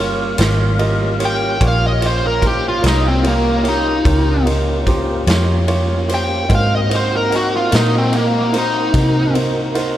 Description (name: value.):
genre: slow blues.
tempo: 49 BPM (dotted quarters).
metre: 12/8.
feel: straight.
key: Eb mixolydian.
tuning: A4 = 440 Hz.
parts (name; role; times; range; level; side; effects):
warm grand piano; accompaniment; 0.0-10.0 s; Eb4 to Eb5; -23 LUFS; right 3 dB; none.
tonewheel organ; sustained chords; 0.0-10.0 s; G3 to F5; -23 LUFS; equal; slow rotary speaker, overdrive.
vintage muted fingered electric bass; bass; 0.0-10.0 s; G1 to C3; -18 LUFS; equal; none.
raw garage drum kit; drums; 0.4-9.9 s; kick drum, ride cymbal, snare drum; -22 LUFS; equal; none.
smooth overdriven lead guitar; melody; 1.3-9.3 s; Bb3 to G5; -19 LUFS; equal; none.
room: moderate huge ambient reverb, RT60 7.3 s.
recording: dreamy mix soaked in reverb.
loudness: -13 LUFS.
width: side -12 dB against mid.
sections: 0.0-10.0 A section.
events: lead electric guitar solo 0.0-10.0.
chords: 0.0 Eb9 (rootless); 6.5 Ab9.